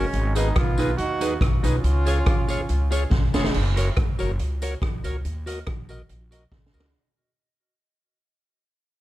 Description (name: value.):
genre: ska.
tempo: 141 BPM.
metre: 4/4.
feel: straight.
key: F# major.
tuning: A4 = 440 Hz.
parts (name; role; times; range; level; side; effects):
warm horn section; melody; 0.0-3.1 s; G#3 to F#4; -29 LUFS; right 2 dB; dub echo.
clean electric guitar; accompaniment; 0.0-6.9 s; D#4 to D#5; -31 LUFS; right 3 dB; spring reverb, dub echo.
bright tonewheel organ; stabs; 0.0-6.9 s; D#4 to D#5; -32 LUFS; left 4 dB; overdrive, slow rotary speaker.
upright bass; bass; 0.0-6.9 s; E#1 to D#2; -24 LUFS; equal; none.
street-band drum kit; drums; 0.1-6.9 s; crash cymbal, hi-hat, kick drum, rim click, snare drum; -24 LUFS; equal; none.
tambourine; percussion; 0.4-6.8 s; none; -44 LUFS; left 5 dB; dub echo.
room: little or no reverb.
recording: dark, warm production.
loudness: -20 LUFS.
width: side -15 dB against mid.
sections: 0.0-3.5 A section; 3.5-6.9 B section.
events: drum fill 3.1-3.5, 6.5-6.9; fade-out 3.5-6.9.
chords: 0.1 G#m; 1.8 C#; 3.5 F#; 5.2 D#m.